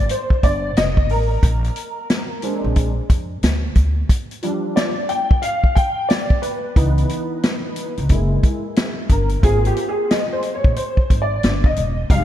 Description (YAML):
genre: hip hop, jazz-hop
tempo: 90 BPM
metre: 4/4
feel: swing 63% on 16ths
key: unclear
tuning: A4 = 439 Hz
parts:
  - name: warm baby grand piano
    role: accompaniment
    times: 0.0-12.2 s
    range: Fb3 to G5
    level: -22 LUFS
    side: equal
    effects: ensemble chorus
  - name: upright bass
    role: bass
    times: 0.0-12.2 s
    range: Fb1 to F2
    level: -20 LUFS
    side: equal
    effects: none
  - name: vintage drum kit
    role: drums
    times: 0.1-12.2 s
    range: hi-hat, kick drum, snare drum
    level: -18 LUFS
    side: equal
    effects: none
room: light reverb, studio ambience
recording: none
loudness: -16 LUFS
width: side -12 dB against mid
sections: 0.0-12.2 A section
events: grand piano solo 0.0-12.2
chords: 0.0 F7sus2; 1.4 Bb7; 4.1 G7/F; 6.8 Dbm7; 8.1 Gb9; 9.4 Ab69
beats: 0.10 0.76 | 1.43 2.10 2.76 3.43 | 4.10 4.76 5.43 6.10 | 6.76 7.43 8.10 8.76 | 9.43 10.10 10.76 11.43 | 12.10